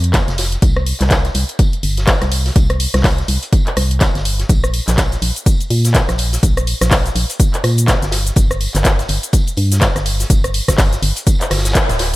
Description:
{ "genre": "deep house", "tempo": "124 BPM", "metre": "4/4", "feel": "swing 59% on 16ths", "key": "unclear", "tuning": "A4 = 440 Hz", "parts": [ { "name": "organ-like FM bass", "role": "bass", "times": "0.0-12.2 s", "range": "D1 to Bb2", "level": "-17 LUFS", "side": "equal", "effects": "sidechain pumping" }, { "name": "deep house drum kit", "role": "drums", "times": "0.0-12.2 s", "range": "handclaps, hi-hat, rim click, shaker", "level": "-19 LUFS", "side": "left 1 dB", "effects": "none" }, { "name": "electronic kick drum", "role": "drums", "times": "0.1-11.9 s", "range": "none", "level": "-14 LUFS", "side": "equal", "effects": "none" }, { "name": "vintage drum kit", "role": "drums", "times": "0.1-12.2 s", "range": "hi-hat, snare drum, tambourine", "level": "-28 LUFS", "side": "equal", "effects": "sidechain pumping on hats, high-pass filter on hats, high-pass filter on snare, sidechain pumping on perc, high-pass filter on perc, high-pass filter on room" } ], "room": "little or no reverb", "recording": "none", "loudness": "-13 LUFS", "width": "side -18 dB against mid", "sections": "0.0-12.2 A section", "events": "band accent 11.8", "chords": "none" }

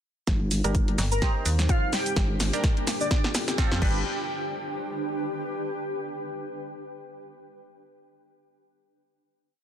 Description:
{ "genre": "bass house", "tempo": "127 BPM", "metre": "4/4", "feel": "swing 56% on 16ths", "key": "G minor", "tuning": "A4 = 445 Hz", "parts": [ { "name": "dark analog pad", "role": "sustained chords", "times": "0.3-4.0 s", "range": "G3 to C5", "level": "-38 LUFS", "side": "left 2 dB", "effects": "wide subtle chorus, sidechain pumping" }, { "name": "vowel-sweep wobble bass", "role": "bass", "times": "0.3-4.0 s", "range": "G1", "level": "-27 LUFS", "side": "equal", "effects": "chorus, sidechain pumping" }, { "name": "electronic kick drum", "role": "drums", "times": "0.3-3.9 s", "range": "none", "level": "-25 LUFS", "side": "equal", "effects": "none" }, { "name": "house drum kit", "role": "drums", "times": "0.3-3.9 s", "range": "crash cymbal, hi-hat, shaker, snare drum", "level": "-30 LUFS", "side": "equal", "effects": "none" }, { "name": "granular cloud pad", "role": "texture", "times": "1.4-5.9 s", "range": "D4 to G5", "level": "-33 LUFS", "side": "equal", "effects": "built-in reverb, sidechain pumping" }, { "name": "band-passed chord stab", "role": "stabs", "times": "0.6-4.0 s", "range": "C4 to Eb5", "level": "-33 LUFS", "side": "right 2 dB", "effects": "phaser, sidechain pumping, ping-pong delay" }, { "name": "metallic FM bass", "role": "bass", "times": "1.0-3.8 s", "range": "G1 to F2", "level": "-24 LUFS", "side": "equal", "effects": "overdrive, sidechain pumping" }, { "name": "airy dreamy lead", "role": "melody", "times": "1.1-3.2 s", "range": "D4 to Bb4", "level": "-31 LUFS", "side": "equal", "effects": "chorus, ping-pong delay" } ], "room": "light reverb, digital ambience", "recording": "dense, heavily limited modern master", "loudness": "-24 LUFS", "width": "side -10 dB against mid", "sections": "0.3-4.1 build; 4.1-5.9 final chord", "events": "build-up 0.3-4.1; drum fill 0.3-4.1", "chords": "0.3 Gm; 1.2 Cm; 2.2 Gm; 3.1 Fadd9; 3.8 G" }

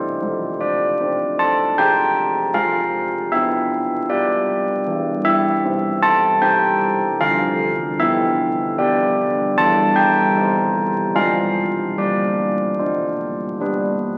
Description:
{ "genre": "classical, tune for church bells", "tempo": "77 BPM", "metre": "3/4", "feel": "straight", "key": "unclear", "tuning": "A4 = 441 Hz", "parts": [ { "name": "carillon bells", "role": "solo", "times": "0.0-14.2 s", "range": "D3 to A5", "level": "-19 LUFS", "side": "equal", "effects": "none" } ], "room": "wet recital hall reverb, RT60 1.8 s", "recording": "very old 78 rpm record, vinyl crackle", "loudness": "-19 LUFS", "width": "mono", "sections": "0.0-14.2 A section", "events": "none", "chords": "0.2 Dm7/F; 2.5 G7/F; 4.9 C/E; 7.2 G7/D; 9.6 C/E; 11.1 Dm7/F; 12.0 Gsus4; 13.6 G" }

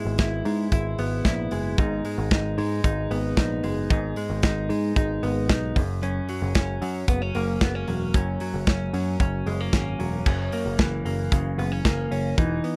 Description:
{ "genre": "jangly indie pop", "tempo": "113 BPM", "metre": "4/4", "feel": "straight", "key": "unclear", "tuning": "A4 = 440 Hz", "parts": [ { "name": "direct-recorded clean electric guitar", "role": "arpeggios", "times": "0.0-12.8 s", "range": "F#2 to E4", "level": "-30 LUFS", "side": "equal", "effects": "subtle chorus, slapback echo" }, { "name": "picked electric bass", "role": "bass", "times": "0.1-12.6 s", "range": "E1 to G#2", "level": "-30 LUFS", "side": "equal", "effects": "none" }, { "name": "modern studio drum kit", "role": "drums", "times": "0.2-12.8 s", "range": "crash cymbal, hi-hat, kick drum, snare drum", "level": "-25 LUFS", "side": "equal", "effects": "none" } ], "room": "little or no reverb", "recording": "dry, close 1970s-style studio recording", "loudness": "-25 LUFS", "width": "mono", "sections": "0.0-10.3 A section; 10.3-12.8 B section", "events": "none", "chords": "0.0 E; 1.8 G#m; 5.8 F#; 10.3 F#7" }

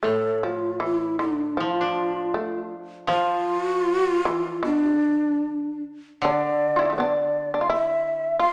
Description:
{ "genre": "japanese traditional, Japanese chamber music", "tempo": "73-85 BPM", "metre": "2/4", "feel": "rubato", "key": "D minor", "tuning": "A4 = 442 Hz", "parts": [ { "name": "breathy mellow shakuhachi", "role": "melody", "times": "0.0-8.5 s", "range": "D4 to F5", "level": "-26 LUFS", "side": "equal", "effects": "none" }, { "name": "shamisen", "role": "second line", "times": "0.0-8.5 s", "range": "D3 to F4", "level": "-29 LUFS", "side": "equal", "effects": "none" }, { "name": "koto", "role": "accompaniment", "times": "0.0-8.4 s", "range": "A2 to D4", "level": "-31 LUFS", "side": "equal", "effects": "none" } ], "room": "moderate recital hall reverb, RT60 1.4 s", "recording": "none", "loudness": "-24 LUFS", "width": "mono", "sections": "0.0-6.2 A section; 6.2-8.5 B section", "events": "none", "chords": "none" }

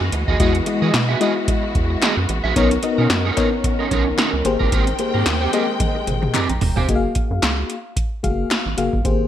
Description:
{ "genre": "early-eighties boogie funk", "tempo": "111 BPM", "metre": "4/4", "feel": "swing 56% on 16ths", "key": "F# major", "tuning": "A4 = 439 Hz", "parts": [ { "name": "warm studio string section", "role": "sustained chords", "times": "0.0-6.9 s", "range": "D#3 to G5", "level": "-26 LUFS", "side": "equal", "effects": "none" }, { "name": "electric guitar at the edge of break-up", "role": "riff", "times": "0.0-6.9 s", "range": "B#3 to E5", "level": "-24 LUFS", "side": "right 7 dB", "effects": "analog chorus" }, { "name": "rubbery square bass", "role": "bass", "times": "0.0-9.3 s", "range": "E1 to E3", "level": "-22 LUFS", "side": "right 1 dB", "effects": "none" }, { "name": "electro analog drum machine", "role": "drums", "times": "0.1-9.2 s", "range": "hi-hat, kick drum, snare drum, toms", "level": "-21 LUFS", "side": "right 1 dB", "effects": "gated reverb" }, { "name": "FM electric piano with tremolo", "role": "accompaniment", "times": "0.4-9.3 s", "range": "G#3 to D6", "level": "-22 LUFS", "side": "left 5 dB", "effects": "none" }, { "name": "group handclap", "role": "percussion", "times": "0.9-8.7 s", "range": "none", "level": "-30 LUFS", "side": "left 8 dB", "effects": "none" } ], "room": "light reverb, digital ambience", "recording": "bright 1980s-style digital production", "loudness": "-17 LUFS", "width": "side -11 dB against mid", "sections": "0.0-6.9 A section; 6.9-9.3 B section", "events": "drum fill 5.8-6.9", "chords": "0.0 Emaj9; 2.6 Bmaj9; 4.5 G#maj9; 6.9 F#maj9" }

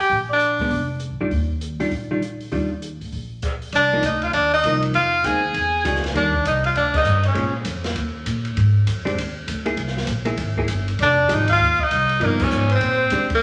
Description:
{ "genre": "jazz, small-group swing and bop", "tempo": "198 BPM", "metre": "4/4", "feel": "swing 62% on 8ths", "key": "Eb major, C minor from 3.7 s", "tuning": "A4 = 437 Hz", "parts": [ { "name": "edgy tenor saxophone", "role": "melody", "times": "0.0-0.9, 3.8-7.5, 11.0-13.4 s", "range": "Bb3 to Ab4", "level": "-22 LUFS", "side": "equal", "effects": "none" }, { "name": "breathy alto saxophone", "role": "second line", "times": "0.0-0.9, 3.7-7.5, 11.0-13.3 s", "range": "Bb4 to Ab5", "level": "-27 LUFS", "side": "equal", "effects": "none" }, { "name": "upright bass", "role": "bass", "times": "0.1-13.3 s", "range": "F1 to D3", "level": "-26 LUFS", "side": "equal", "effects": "none" }, { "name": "open jazz drum kit", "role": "drums", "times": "0.1-13.4 s", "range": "crash cymbal, hi-hat, kick drum, ride cymbal, snare drum", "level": "-32 LUFS", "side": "equal", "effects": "none" }, { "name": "vintage hollow-body jazz guitar", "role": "accompaniment", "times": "0.6-13.3 s", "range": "Eb3 to Ab4", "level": "-28 LUFS", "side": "equal", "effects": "none" } ], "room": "wet large studio reverb, RT60 1.1 s", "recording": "none", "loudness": "-21 LUFS", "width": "mono", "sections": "0.0-3.7 A section; 3.7-13.4 B section", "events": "band accent 6.9, 12.4", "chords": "0.1 Bb(b9); 1.3 Ebmaj9; 3.7 Cm11; 4.9 Fm7; 5.5 E9; 6.2 Ebmaj7; 7.4 Bbm7; 8.0 Eb5; 8.6 Ab5; 9.8 C7b13; 11.0 Fm9; 12.2 Gaug7; 12.8 Bb13" }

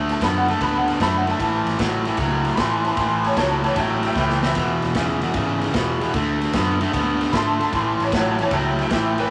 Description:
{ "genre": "electric blues shuffle", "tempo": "152 BPM", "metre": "4/4", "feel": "swing 68% on 8ths", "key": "A mixolydian", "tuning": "A4 = 441 Hz", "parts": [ { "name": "overdriven semi-hollow guitar", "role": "riff", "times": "0.0-9.3 s", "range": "E2 to B3", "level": "-24 LUFS", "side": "equal", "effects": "none" }, { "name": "vintage muted fingered electric bass", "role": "bass", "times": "0.0-9.2 s", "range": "E1 to F#2", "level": "-30 LUFS", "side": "equal", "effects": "none" }, { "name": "honky-tonk upright piano", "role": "accompaniment", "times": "0.1-9.3 s", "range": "B4 to C6", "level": "-26 LUFS", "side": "equal", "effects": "none" }, { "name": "raw garage drum kit", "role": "drums", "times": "0.1-9.2 s", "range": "kick drum, ride cymbal, snare drum, splash cymbal", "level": "-29 LUFS", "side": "equal", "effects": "none" } ], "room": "wet large studio reverb, RT60 0.9 s", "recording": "none", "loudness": "-21 LUFS", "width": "mono", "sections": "0.0-9.3 A section", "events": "drum fill 4.2-4.6", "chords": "0.0 D; 1.4 A; 4.6 E; 6.1 D; 7.7 A" }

